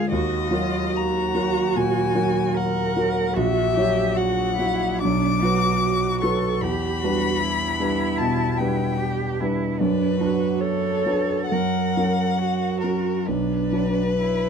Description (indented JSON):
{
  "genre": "classical, slow romantic movement for piano trio",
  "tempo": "66-77 BPM",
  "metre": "4/4",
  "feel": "rubato",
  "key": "Eb minor, B minor from 3.4 s",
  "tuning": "A4 = 439 Hz",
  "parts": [
    { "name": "rich violin", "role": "melody", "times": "0.0-14.5 s", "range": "A#4 to D6", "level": "-26 LUFS", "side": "left 7 dB", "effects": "none" },
    { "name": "rich cello", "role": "second line", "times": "0.0-14.5 s", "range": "D4 to Bb4", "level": "-26 LUFS", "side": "right 8 dB", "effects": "none" },
    { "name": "clear concert grand piano", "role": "accompaniment", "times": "0.0-14.5 s", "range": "A#1 to C#5", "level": "-23 LUFS", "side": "equal", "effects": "none" }
  ],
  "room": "moderate studio reverb, RT60 0.8 s",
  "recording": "dark, warm production",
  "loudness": "-20 LUFS",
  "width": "side -6 dB against mid",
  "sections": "0.0-14.5 A section",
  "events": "none",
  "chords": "0.1 Ebm; 3.4 F#7/A#; 5.0 Bm; 6.6 Em7; 9.8 Bm/F#; 11.5 F#; 13.3 Bm"
}